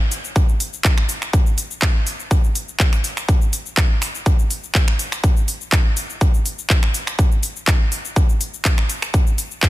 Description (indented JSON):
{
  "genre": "house",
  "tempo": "123 BPM",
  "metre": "4/4",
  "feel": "straight",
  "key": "none",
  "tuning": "none",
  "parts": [
    { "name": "pop drum kit", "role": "drums", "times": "0.1-9.7 s", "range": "cabasa, finger snaps, handclaps, hi-hat", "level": "-23 LUFS", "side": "equal", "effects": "studio reverb" },
    { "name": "electronic kick drum", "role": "drums", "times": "0.4-9.7 s", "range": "none", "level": "-16 LUFS", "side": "equal", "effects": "studio reverb" }
  ],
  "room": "digital ambience",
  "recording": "dense, heavily limited modern master",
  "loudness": "-16 LUFS",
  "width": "side -17 dB against mid",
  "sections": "0.0-9.7 A section",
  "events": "none",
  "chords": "none"
}